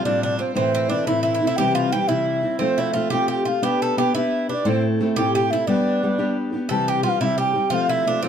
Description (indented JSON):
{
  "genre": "celtic folk",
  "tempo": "117 BPM (dotted quarters)",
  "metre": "6/8",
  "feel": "straight",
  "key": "unclear",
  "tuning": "A4 = 440 Hz",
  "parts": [
    { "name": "mellow baroque flute", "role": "melody", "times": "0.0-8.3 s", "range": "C5 to A5", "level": "-23 LUFS", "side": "right 2 dB", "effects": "none" },
    { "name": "Irish bouzouki", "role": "second line", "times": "0.0-8.3 s", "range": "C4 to A4", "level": "-26 LUFS", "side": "right 3 dB", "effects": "none" },
    { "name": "fingerpicked steel-string acoustic guitar", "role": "accompaniment", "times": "0.0-8.3 s", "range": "A2 to B4", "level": "-22 LUFS", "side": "left 2 dB", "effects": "none" }
  ],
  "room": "moderate small room reverb, RT60 0.5 s",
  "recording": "dark, warm production",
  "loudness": "-18 LUFS",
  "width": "side -8 dB against mid",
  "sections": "0.0-6.7 A section; 6.7-8.3 B section",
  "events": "none",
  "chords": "0.0 Fadd9/A; 0.6 Am; 1.6 C; 2.6 F; 3.6 G/B; 4.6 Am; 5.7 G; 6.7 C; 7.7 F",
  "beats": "0.04 | 0.55 1.06 | 1.58 2.09 | 2.60 3.11 | 3.62 4.14 | 4.65 5.16 | 5.67 6.18 | 6.70 7.21 | 7.72 8.23"
}